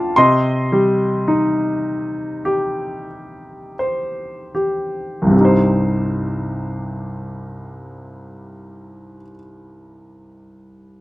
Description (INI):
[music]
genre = classical, lyrical solo piano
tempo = 37-57 BPM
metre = 4/4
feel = rubato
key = C minor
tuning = A4 = 439 Hz
[part]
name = bright concert grand piano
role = solo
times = 0.0-11.0 s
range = C2 to C6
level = -17 LUFS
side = equal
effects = none
[sound]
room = light reverb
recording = close, detailed microphones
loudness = -16 LUFS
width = side -18 dB against mid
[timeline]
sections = 0.0-5.3 A section; 5.3-11.0 B section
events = slowing down 0.0-5.3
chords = 0.2 Cm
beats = | 0.17 1.28 2.46 3.79 | 5.34 6.95 8.51 10.06